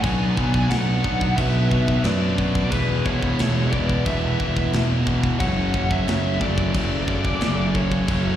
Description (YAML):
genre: heavy metal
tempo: 90 BPM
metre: 4/4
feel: straight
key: F# minor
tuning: A4 = 439 Hz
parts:
  - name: high-gain lead guitar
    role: melody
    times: 0.0-8.4 s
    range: B4 to G#5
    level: -28 LUFS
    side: left 1 dB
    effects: distortion, slapback echo, ping-pong delay
  - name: high-gain lead guitar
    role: second line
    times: 0.0-8.4 s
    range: G#4 to D5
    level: -34 LUFS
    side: right 3 dB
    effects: distortion, slapback echo
  - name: high-gain distorted guitar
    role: riff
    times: 0.0-8.4 s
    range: E2 to B3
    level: -28 LUFS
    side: left 8 dB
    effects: distortion, slapback echo
  - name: scooped high-gain guitar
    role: riff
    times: 0.0-8.4 s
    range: E2 to B3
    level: -28 LUFS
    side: right 8 dB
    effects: distortion
  - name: tight distorted guitar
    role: riff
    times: 0.0-8.4 s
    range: F#2 to F#4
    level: -31 LUFS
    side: right 1 dB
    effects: distortion
  - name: fuzz picked electric bass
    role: bass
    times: 0.0-8.4 s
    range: E1 to F#2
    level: -23 LUFS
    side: equal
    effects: overdrive
  - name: tight metal drum kit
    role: drums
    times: 0.0-8.2 s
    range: crash cymbal, kick drum, snare drum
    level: -26 LUFS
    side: equal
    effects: none
room: little or no reverb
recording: live gig heard through the venue's PA, recital hall reverb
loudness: -19 LUFS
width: side -11 dB against mid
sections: 0.0-8.4 A section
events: none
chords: 0.0 Bm; 2.7 E; 5.4 F#m